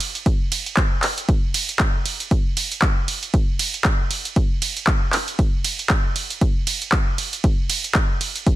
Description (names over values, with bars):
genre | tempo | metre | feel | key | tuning
house | 117 BPM | 4/4 | swing 57% on 16ths | none | none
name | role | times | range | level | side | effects
punchy analog drum machine | drums | 0.0-8.6 s | handclaps, hi-hat, ride cymbal | -22 LUFS | right 2 dB | none
electronic kick drum | drums | 0.3-8.6 s | none | -19 LUFS | equal | none
room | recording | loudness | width
digital ambience | dense, heavily limited modern master | -18 LUFS | side -15 dB against mid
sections
0.0-8.6 A section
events
none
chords
none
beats
| 0.26 0.77 1.29 1.80 | 2.31 2.82 3.34 3.85 | 4.36 4.88 5.39 5.90 | 6.41 6.93 7.44 7.95 | 8.47